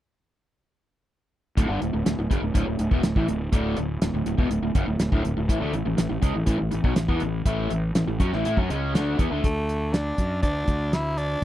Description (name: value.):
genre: classic rock.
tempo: 122 BPM.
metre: 4/4.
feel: straight.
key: D major.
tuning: A4 = 437 Hz.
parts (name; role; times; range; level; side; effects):
raw garage guitar; riff; 1.6-9.4 s; D2 to E4; -26 LUFS; equal; overdrive.
fuzz fingered electric bass; bass; 1.6-11.3 s; D1 to A2; -28 LUFS; equal; overdrive.
damped 70s drum kit; drums; 1.6-11.3 s; hi-hat, kick drum, snare drum; -23 LUFS; equal; none.
raspy tenor saxophone; melody; 9.4-11.4 s; A3 to E4; -27 LUFS; equal; slapback echo.
room: little or no reverb.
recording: dry, close 1970s-style studio recording.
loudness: -22 LUFS.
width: side -13 dB against mid.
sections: 1.6-9.4 A section; 9.4-11.4 B section.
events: none.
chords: 1.6 D5; 5.5 A5; 9.4 D.